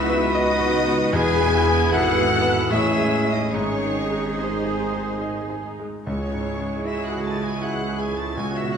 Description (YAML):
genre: classical, romantic movement for piano and orchestra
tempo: 70-82 BPM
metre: 3/4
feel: rubato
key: C# minor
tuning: A4 = 440 Hz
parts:
  - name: clear concert grand piano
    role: melody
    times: 0.0-8.8 s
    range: C#2 to E5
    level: -26 LUFS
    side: left 1 dB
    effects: none
  - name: warm symphonic violin section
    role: melody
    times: 0.0-8.8 s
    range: B#5 to A6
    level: -31 LUFS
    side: left 3 dB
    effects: none
  - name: mellow cor anglais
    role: second line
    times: 0.0-8.8 s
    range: B4 to D#5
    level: -35 LUFS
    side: right 2 dB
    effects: none
  - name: rich symphonic violin section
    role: second line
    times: 0.0-8.8 s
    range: B#4 to A5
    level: -32 LUFS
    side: left 1 dB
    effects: none
  - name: silver concert flute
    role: second line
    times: 0.0-8.8 s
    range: B#4 to A5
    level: -30 LUFS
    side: left 2 dB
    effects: none
  - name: warm clarinet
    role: second line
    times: 0.0-8.8 s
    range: D#4 to F#4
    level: -34 LUFS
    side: left 5 dB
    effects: none
  - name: mellow bassoon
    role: accompaniment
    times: 0.0-8.8 s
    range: F#3 to B3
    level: -32 LUFS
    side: right 1 dB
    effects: none
  - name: rich symphonic viola section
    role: accompaniment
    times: 0.0-8.8 s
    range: B3 to G#4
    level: -31 LUFS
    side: right 4 dB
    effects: none
  - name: clear trombone section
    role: sustained chords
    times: 0.0-8.8 s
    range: D#3 to C#4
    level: -33 LUFS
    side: right 5 dB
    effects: none
  - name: mellow French horn section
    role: sustained chords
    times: 0.0-8.8 s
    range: B#3 to A4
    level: -29 LUFS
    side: left 6 dB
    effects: none
  - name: mellow trumpet section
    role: stabs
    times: 0.0-8.8 s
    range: F#4 to B4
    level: -30 LUFS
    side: right 1 dB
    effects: none
  - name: mellow tuba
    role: bass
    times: 0.0-8.8 s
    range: E1 to C#2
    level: -32 LUFS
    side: right 3 dB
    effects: none
  - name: rich studio cello section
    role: bass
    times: 0.0-8.8 s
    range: D#4 to G#4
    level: -33 LUFS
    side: right 2 dB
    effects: none
  - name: rich symphonic double bass section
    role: bass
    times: 0.0-8.8 s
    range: G#1 to E2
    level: -31 LUFS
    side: right 5 dB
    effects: none
  - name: timpani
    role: percussion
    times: 6.1-7.2 s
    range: none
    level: barely audible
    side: none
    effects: none
room: wet recital hall reverb, RT60 1.5 s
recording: none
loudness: -19 LUFS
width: side -7 dB against mid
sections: 0.0-8.8 A section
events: none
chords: 0.0 B/C#; 1.1 E; 2.7 Amaj7; 3.5 G#; 6.1 C#m